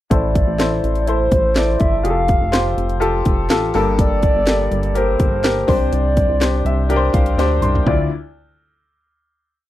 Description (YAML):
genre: piano-driven pop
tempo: 124 BPM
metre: 4/4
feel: straight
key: D minor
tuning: A4 = 440 Hz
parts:
  - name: hollow clarinet-like synth lead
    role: melody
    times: 0.1-8.1 s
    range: C5 to F5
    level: -20 LUFS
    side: right 1 dB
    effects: chorus
  - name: clear concert grand piano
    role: accompaniment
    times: 0.1-8.1 s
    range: D2 to C6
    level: -20 LUFS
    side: left 3 dB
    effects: none
  - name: chorused synth bass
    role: bass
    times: 0.1-8.1 s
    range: F1 to D2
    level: -20 LUFS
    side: equal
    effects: none
  - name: house drum kit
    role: drums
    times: 0.1-8.0 s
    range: handclaps, hi-hat, kick drum, snare drum, toms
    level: -18 LUFS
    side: equal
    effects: none
room: little or no reverb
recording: dry, close 1970s-style studio recording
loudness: -14 LUFS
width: side -14 dB against mid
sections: 0.1-7.9 pre-chorus; 7.9-9.7 final chord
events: grand piano fill 6.4-7.9; drum fill 7.4-7.9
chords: 0.1 Am; 2.1 Fadd9; 3.7 Gmadd9; 5.7 Csus2; 7.9 Dmadd9